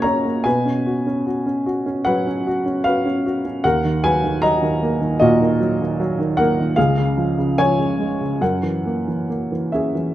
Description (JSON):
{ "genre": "classical, lyrical solo piano", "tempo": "67-79 BPM", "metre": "4/4", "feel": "rubato", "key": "F# major", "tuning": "A4 = 440 Hz", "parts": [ { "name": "dark upright piano", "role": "solo", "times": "0.0-10.1 s", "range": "C#2 to A#5", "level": "-17 LUFS", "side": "equal", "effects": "none" } ], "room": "light reverb", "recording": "close, detailed microphones", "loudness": "-17 LUFS", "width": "side -13 dB against mid", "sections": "0.0-10.1 A section", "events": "none", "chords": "0.5 Bsus2; 3.6 D#m; 6.8 C#; 8.4 F#7" }